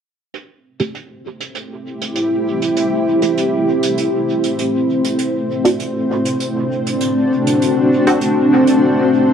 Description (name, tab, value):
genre	ambient dub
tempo	99 BPM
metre	4/4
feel	straight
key	A dorian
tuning	A4 = 440 Hz
part	granular cloud pad	sustained chords	1.7-9.3 s	A3 to C5	-14 LUFS	equal	built-in reverb
part	hi-hat	drums	0.3-8.8 s	none	-28 LUFS	right 5 dB	low-pass filter on hats, low-pass filter on room, dub echo
part	filtered dub chord stab	stabs	0.8-8.2 s	A3 to G4	-20 LUFS	right 1 dB	ensemble chorus, dub echo
room	moderate concert hall reverb, RT60 2.3 s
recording	dark, warm production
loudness	-14 LUFS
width	side -8 dB against mid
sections	0.3-9.3 A section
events	filter sweep on synth stab 0.3-9.3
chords	0.3 Am7; 5.2 D7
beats	| 0.34 0.95 1.55 2.16 | 2.76 3.37 3.98 4.58 | 5.19 5.79 6.40 7.01 | 7.61 8.22 8.82